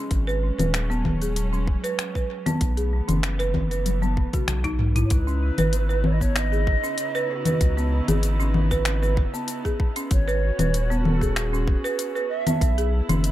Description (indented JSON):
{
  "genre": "organic downtempo",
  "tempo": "96 BPM",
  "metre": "4/4",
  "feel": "straight",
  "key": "C# minor",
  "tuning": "A4 = 440 Hz",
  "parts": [
    { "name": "warm chamber string section", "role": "sustained chords", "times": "0.0-13.3 s", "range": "C#3 to F#4", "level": "-35 LUFS", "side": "right 2 dB", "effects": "sidechain pumping" },
    { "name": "folk marimba with medium hard mallets", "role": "arpeggios", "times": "0.0-13.3 s", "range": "B3 to B4", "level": "-28 LUFS", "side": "right 2 dB", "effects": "analog delay" },
    { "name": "round analog bass", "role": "bass", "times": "0.1-13.3 s", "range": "D#1 to C#2", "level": "-24 LUFS", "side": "equal", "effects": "sidechain pumping" },
    { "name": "afro-pop drum kit", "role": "drums", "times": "0.1-13.3 s", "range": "cabasa, congas, finger snaps, hi-hat, toms", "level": "-26 LUFS", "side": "left 2 dB", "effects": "none" },
    { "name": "electronic kick drum", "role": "drums", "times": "0.1-12.7 s", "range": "none", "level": "-23 LUFS", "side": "equal", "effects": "none" },
    { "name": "mellow Native American-style cedar flute", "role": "melody", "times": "5.0-12.9 s", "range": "F#4 to E5", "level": "-31 LUFS", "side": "right 1 dB", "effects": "tape echo" }
  ],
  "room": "digital ambience",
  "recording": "echo-heavy mix",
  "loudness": "-21 LUFS",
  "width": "side -14 dB against mid",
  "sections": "0.0-5.1 A section; 5.1-13.3 B section",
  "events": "drum fill 3.9-5.1",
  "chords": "0.1 G#7sus4; 2.6 B7sus4; 5.1 C#m9; 10.1 G#7sus4; 12.6 Bsus4"
}